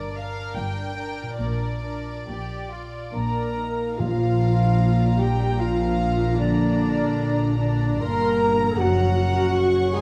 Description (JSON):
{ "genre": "cinematic", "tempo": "68-79 BPM", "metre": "3/4", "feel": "rubato", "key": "Bb major from 4.0 s", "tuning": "A4 = 440 Hz", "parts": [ { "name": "warm symphonic violin section", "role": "melody", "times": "0.0-10.0 s", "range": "D5 to Db6", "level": "-38 LUFS", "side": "equal", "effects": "none" }, { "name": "warm symphonic violin section", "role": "second line", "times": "0.0-10.0 s", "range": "D4 to Bb5", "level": "-35 LUFS", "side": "equal", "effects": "none" }, { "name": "concert harp", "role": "arpeggios", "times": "0.0-10.0 s", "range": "Gb2 to Bb5", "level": "-33 LUFS", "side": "equal", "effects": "none" }, { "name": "rich symphonic cello section", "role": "bass", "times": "0.0-10.0 s", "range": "Gb2 to Bb2", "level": "-31 LUFS", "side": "equal", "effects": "none" }, { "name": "warm symphonic double bass section", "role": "bass", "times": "0.0-10.0 s", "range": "Gb1 to Bb1", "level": "-29 LUFS", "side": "equal", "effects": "none" }, { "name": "concert flute", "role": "second line", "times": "3.1-10.0 s", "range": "D5 to Bb5", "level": "-32 LUFS", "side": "equal", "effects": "none" }, { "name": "mellow clarinet", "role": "second line", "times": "3.1-10.0 s", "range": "D4 to Bb4", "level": "-33 LUFS", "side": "equal", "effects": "none" }, { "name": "dark symphonic viola section", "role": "accompaniment", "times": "3.1-10.0 s", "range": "D4 to Bb4", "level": "-28 LUFS", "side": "equal", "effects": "none" }, { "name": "mellow French horn section", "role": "sustained chords", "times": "3.1-10.0 s", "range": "D3 to Bb3", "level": "-30 LUFS", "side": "equal", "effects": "none" }, { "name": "timpani", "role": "percussion", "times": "4.0-5.2 s", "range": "Bb2", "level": "-34 LUFS", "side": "equal", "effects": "none" } ], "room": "moderate scoring stage reverb, RT60 1.8 s", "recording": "close, detailed microphones, vinyl crackle", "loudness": "-22 LUFS", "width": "mono", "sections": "0.0-4.0 A section; 4.0-10.0 B section", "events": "none", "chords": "0.0 Gm; 1.4 Bb; 8.8 Gb" }